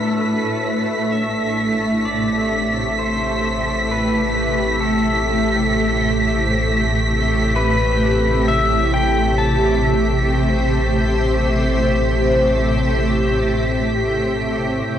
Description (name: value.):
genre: ambient.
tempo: 66 BPM.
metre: 4/4.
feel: straight.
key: A minor.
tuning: A4 = 440 Hz.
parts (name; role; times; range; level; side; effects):
shimmering ambient pad; sustained chords; 0.0-15.0 s; A2 to C5; -19 LUFS; equal; chorus, built-in reverb, cassette tape.
organ-like drone; drone; 0.0-14.9 s; A3; -28 LUFS; equal; ensemble chorus, built-in reverb, cassette tape.
dark studio violin section; texture; 0.0-14.9 s; B6; -23 LUFS; right 2 dB; cassette tape.
pedal steel guitar; melody; 0.2-13.9 s; A4 to A5; -26 LUFS; left 5 dB; cassette tape, analog delay.
warm sub bass; bass; 0.2-14.8 s; A1; -23 LUFS; equal; none.
room: wet studio reverb, RT60 0.5 s.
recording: home recording on cassette.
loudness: -16 LUFS.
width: side -10 dB against mid.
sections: 0.2-14.9 A section.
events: fade-in on sub bass 0.2-14.9; fade-in on pedal steel guitar 0.2-14.9; fade-out on synth drone 0.2-14.9.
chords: 0.2 Am9.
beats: | 0.21 1.14 2.06 2.98 | 3.90 4.81 5.72 6.63 | 7.54 8.45 9.36 10.27 | 11.18 12.09 13.01 13.94 | 14.87.